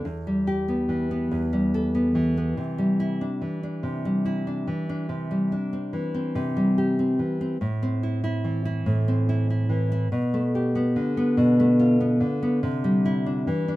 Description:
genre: folk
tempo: 48 BPM (dotted quarters)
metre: 6/8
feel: straight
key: unclear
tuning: A4 = 436 Hz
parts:
  - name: nylon-string guitar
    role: solo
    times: 0.0-13.8 s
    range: E2 to A4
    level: -22 LUFS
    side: equal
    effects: none
room: wet studio reverb, RT60 0.5 s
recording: minimal, uncompressed stereo recording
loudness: -22 LUFS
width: side -17 dB against mid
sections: 0.0-13.8 A section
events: none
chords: 0.1 Em; 2.6 Cadd9; 7.6 Am; 10.1 Gadd9/B; 12.6 Cadd9

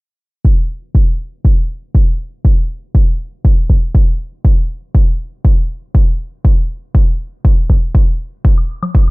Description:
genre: house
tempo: 120 BPM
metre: 4/4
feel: straight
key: none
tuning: none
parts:
  - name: electronic kick drum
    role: drums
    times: 0.4-9.1 s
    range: none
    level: -10 LUFS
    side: equal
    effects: none
  - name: woodblock and congas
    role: percussion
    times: 8.6-9.1 s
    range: none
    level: -22 LUFS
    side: left 2 dB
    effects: sidechain pumping on perc
room: little or no reverb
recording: dark, warm production, low-pass filter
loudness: -12 LUFS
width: side -27 dB against mid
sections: 0.4-9.1 A section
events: filter sweep 0.4-9.1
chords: none

